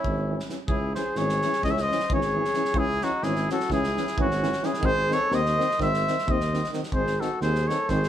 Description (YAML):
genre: balkan folk, Balkan brass band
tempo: 259 BPM (eighths)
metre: 9/8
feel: straight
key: C# harmonic minor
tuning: A4 = 438 Hz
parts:
  - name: clear trumpet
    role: melody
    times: 0.0-8.1 s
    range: E4 to E5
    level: -26 LUFS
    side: equal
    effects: none
  - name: warm flugelhorn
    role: second line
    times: 0.0-8.1 s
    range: C#4 to C#5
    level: -32 LUFS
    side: left 2 dB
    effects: none
  - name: dark tuba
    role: bass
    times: 0.0-8.1 s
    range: G#1 to D#2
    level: -29 LUFS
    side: equal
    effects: none
  - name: loose indie drum kit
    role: percussion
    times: 0.0-8.1 s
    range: kick drum, snare drum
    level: -32 LUFS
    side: equal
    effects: none
  - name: mellow euphonium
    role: accompaniment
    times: 0.3-8.0 s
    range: B#3 to C#4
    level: -32 LUFS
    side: left 5 dB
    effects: none
  - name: warm euphonium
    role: accompaniment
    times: 0.3-8.0 s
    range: D#3 to E3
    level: -33 LUFS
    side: right 6 dB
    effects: none
room: moderate stone room reverb, RT60 1.1 s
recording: band playing live in one room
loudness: -22 LUFS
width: side -10 dB against mid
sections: 0.7-8.1 A section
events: none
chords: 0.0 C#m; 4.8 G#